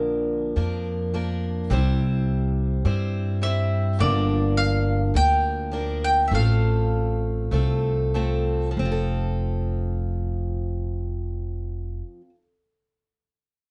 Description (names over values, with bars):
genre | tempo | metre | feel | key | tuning
acoustic folk duo or small band | 94-105 BPM | 4/4 | straight | F major | A4 = 440 Hz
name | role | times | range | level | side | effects
picked steel-string acoustic guitar | accompaniment | 0.0-12.4 s | G2 to C5 | -30 LUFS | equal | none
upright bass | bass | 0.0-12.0 s | F1 to G2 | -26 LUFS | equal | none
mandolin | melody | 3.4-8.1 s | D5 to G5 | -27 LUFS | equal | plate reverb
room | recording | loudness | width
light reverb | dark, warm production, nothing above 10.7 kHz | -24 LUFS | mono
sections
0.0-8.8 A section; 8.8-11.3 B section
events
slowing down 4.0-8.8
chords
0.0 Bb; 1.7 C; 4.0 Gm7; 6.3 F/A; 8.8 F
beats
0.56 1.13 | 1.70 2.28 2.85 3.42 | 3.99 4.57 5.14 5.72 | 6.31 6.91 7.51 8.13 | 8.77 9.40 10.04 10.68